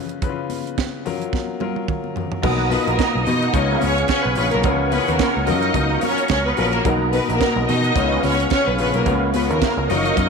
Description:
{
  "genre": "disco",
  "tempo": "108 BPM",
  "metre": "4/4",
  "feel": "swing 56% on 16ths",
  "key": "unclear",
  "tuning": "A4 = 441 Hz",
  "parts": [
    { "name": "clear concert grand piano", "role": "accompaniment", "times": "0.0-10.3 s", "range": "B2 to Db5", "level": "-24 LUFS", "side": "left 9 dB", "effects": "none" },
    { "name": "tight funk drum kit", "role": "drums", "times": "0.1-10.3 s", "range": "crash cymbal, hi-hat, kick drum, snare drum, toms", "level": "-25 LUFS", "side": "right 5 dB", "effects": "none" },
    { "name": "congas", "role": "percussion", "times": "0.2-10.3 s", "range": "none", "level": "-30 LUFS", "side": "left 9 dB", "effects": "none" },
    { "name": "mellow electric guitar", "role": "accompaniment", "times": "2.4-10.2 s", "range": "Gb3 to Cb5", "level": "-27 LUFS", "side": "right 11 dB", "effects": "wah, phaser" },
    { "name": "tonewheel organ", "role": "sustained chords", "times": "2.4-10.3 s", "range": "F#4 to D#6", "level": "-26 LUFS", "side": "right 2 dB", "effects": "overdrive, chorus vibrato, slow rotary speaker" },
    { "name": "overdriven picked electric bass", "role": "bass", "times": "2.4-10.3 s", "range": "Gb1 to B2", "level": "-22 LUFS", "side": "right 2 dB", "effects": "none" },
    { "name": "clear studio string section", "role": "second line", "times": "2.7-10.3 s", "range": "A#3 to D#5", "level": "-22 LUFS", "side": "left 1 dB", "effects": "none" }
  ],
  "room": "moderate echo chamber reverb, RT60 1.9 s, small room ambience",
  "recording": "1960s-style stereo with parts hard left and right",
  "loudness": "-17 LUFS",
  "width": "side -5 dB against mid",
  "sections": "0.0-2.4 A section; 2.4-10.3 B section",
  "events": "drum fill 1.3-2.4",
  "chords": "0.0 Db7; 1.1 Gbmaj7; 2.4 Bmaj7; 3.5 Db7; 5.5 Gbmaj7; 6.9 Bmaj7; 8.0 Db7"
}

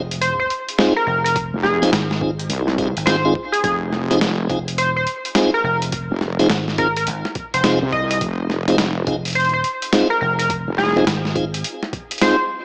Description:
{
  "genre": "glitch hop",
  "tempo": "105 BPM",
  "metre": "4/4",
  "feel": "swing 64% on 16ths",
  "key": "F minor",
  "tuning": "A4 = 439 Hz",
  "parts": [
    { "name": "tonewheel organ", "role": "stabs", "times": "0.0-12.4 s", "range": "C4 to Ab4", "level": "-24 LUFS", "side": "equal", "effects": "overdrive, slow rotary speaker, sidechain pumping, diffuse ambient delay" },
    { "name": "vintage slap bass", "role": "bass", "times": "0.0-11.6 s", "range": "F1 to Ab1", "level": "-28 LUFS", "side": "equal", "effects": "none" },
    { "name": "boom bap sampler-style drum kit", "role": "drums", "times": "0.1-12.4 s", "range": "hi-hat, snare drum", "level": "-25 LUFS", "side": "equal", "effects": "none" },
    { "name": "sync lead", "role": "melody", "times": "0.2-12.4 s", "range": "Ab4 to Eb5", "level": "-23 LUFS", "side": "equal", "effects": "chorus, diffuse ambient delay" },
    { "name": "electronic kick drum", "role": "drums", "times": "1.4-12.1 s", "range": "none", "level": "-33 LUFS", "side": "equal", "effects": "none" },
    { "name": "wobble bass", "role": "bass", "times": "1.5-11.1 s", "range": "F1 to C2", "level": "-24 LUFS", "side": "equal", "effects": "chorus, tube saturation" }
  ],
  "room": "moderate plate reverb, RT60 1.7 s, digital ambience",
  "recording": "dreamy mix soaked in reverb, small speaker sound",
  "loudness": "-19 LUFS",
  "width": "mono",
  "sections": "0.0-12.6 A section",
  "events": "none",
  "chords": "0.0 Fm7"
}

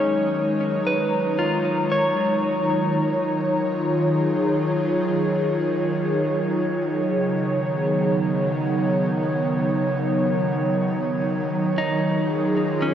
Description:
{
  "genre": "ambient",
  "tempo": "58 BPM",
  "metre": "4/4",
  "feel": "straight",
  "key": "Eb minor",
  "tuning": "A4 = 439 Hz",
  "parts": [
    { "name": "airy breathy pad", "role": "sustained chords", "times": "0.0-12.9 s", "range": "Db3 to Bb5", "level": "-21 LUFS", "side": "equal", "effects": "chorus, shimmer reverb" },
    { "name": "direct-recorded clean electric guitar", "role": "arpeggios", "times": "0.0-4.9, 11.8-12.9 s", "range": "Db4 to Db5", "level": "-26 LUFS", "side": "left 1 dB", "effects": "tape echo, shimmer reverb" },
    { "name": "organ-like drone", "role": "drone", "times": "0.0-12.9 s", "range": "Eb3", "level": "-29 LUFS", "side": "right 1 dB", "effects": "ensemble chorus, built-in reverb" }
  ],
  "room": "wet lush hall reverb, RT60 2.7 s",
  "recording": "worn, warbling old tape, cassette tape, warbly pitch drift",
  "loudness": "-20 LUFS",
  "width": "side -9 dB against mid",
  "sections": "0.0-12.9 A section",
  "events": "none",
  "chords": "0.0 Ab7sus4; 2.9 Ebm11; 7.1 Db7sus4; 11.2 Ebm11"
}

